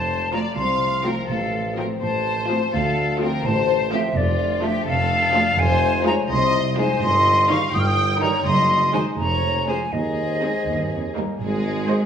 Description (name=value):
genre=cinematic, playful, whimsical film cue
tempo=83 BPM (dotted quarters)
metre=6/8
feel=straight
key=Ab major from 5.6 s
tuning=A4 = 440 Hz
part: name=rich studio violin section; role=melody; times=0.0-12.1 s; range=F4 to G5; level=-27 LUFS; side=left 4 dB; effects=none
part: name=bright silver concert flute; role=second line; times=0.0-11.2 s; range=D5 to F6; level=-22 LUFS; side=equal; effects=none
part: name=concert harp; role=arpeggios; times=0.0-12.1 s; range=F2 to C5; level=-30 LUFS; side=left 10 dB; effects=none
part: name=rich studio cello section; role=bass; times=0.0-12.1 s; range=C2 to Ab3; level=-29 LUFS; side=right 2 dB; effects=none
part: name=warm studio double bass section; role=bass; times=0.0-12.0 s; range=F1 to Eb2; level=-29 LUFS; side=right 3 dB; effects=none
part: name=warm tuba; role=bass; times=0.0-12.0 s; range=F1 to Eb2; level=-27 LUFS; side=right 3 dB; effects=none
part: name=rich studio violin section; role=second line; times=0.3-12.1 s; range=C4 to Ab5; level=-32 LUFS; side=left 2 dB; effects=none
part: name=rich studio viola section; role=accompaniment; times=0.3-12.1 s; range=Eb3 to C5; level=-29 LUFS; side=right 2 dB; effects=none
part: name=mellow French horn section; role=sustained chords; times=11.7-12.0 s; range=C5 to Eb5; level=-38 LUFS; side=equal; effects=none
room=wet scoring stage reverb, RT60 1.6 s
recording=small room ambience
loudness=-18 LUFS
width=side -8 dB against mid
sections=0.0-11.4 A section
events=none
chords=0.0 F; 1.3 F/A; 2.7 Dm7; 4.2 Dm/F; 5.6 Fm7; 7.0 Eb/G; 8.5 Ab7/Gb; 9.2 Db/F; 9.9 Ab/Eb; 10.7 Eb; 11.4 Ab